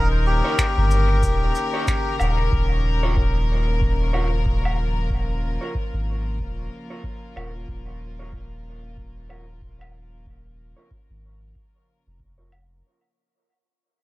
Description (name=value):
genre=ambient dub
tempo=93 BPM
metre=4/4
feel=swing 58% on 16ths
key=unclear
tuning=A4 = 440 Hz
part: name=melodica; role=melody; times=0.0-2.2 s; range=G4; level=-28 LUFS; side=left 2 dB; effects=dub echo
part: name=dark studio string section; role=sustained chords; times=0.0-12.8 s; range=Db3 to Bb4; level=-29 LUFS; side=left 3 dB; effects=none
part: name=soft dub sub bass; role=bass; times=0.0-12.8 s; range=Eb1 to Ab1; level=-22 LUFS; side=equal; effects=none
part: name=electric guitar through a small old amp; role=stabs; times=0.4-12.5 s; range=Eb4 to Db5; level=-35 LUFS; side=right 2 dB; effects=low-pass filter, dub echo
part: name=electronic kick drum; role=drums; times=0.6-12.3 s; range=none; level=-26 LUFS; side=equal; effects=none
part: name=finger snaps, cabasa and woodblock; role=drums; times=0.6-12.7 s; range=none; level=-32 LUFS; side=equal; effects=dub echo
room=studio ambience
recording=none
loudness=-19 LUFS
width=side -18 dB against mid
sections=0.0-12.8 A section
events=fade-out 0.0-12.8; filter sweep on clean electric guitar 0.0-12.8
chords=0.0 Eb7; 2.5 Bbm/Eb